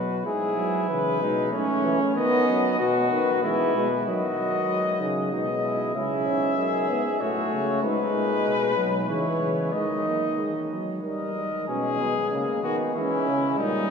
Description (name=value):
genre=classical, imitative canzona for brass ensemble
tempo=95 BPM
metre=3/4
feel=straight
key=E major, G# minor from 7.8 s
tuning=A4 = 440 Hz
part: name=mellow trumpet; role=melody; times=0.0-13.9 s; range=D#4 to E5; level=-27 LUFS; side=left 4 dB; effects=none
part: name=warm flugelhorn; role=second line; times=0.0-13.9 s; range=A#3 to A#4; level=-28 LUFS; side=right 2 dB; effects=none
part: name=dark trombone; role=accompaniment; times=0.0-13.9 s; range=E3 to C#4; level=-28 LUFS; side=equal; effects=none
part: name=warm bass trombone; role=bass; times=0.0-13.9 s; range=F#2 to F#3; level=-30 LUFS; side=equal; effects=none
room=wet cathedral reverb, RT60 5.4 s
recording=small room ambience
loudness=-22 LUFS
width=side -6 dB against mid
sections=0.3-4.1 A section; 4.1-11.7 B section; 11.7-13.9 C section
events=none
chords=0.3 E/G#; 1.5 A; 2.2 B/D#; 3.4 E; 4.1 C#sus24; 5.3 G#m/B; 6.0 C#m; 7.2 F#m/A; 7.8 G#m; 9.1 C#m; 9.7 D#sus4; 11.0 D#; 11.7 G#m/B; 12.9 C#m/E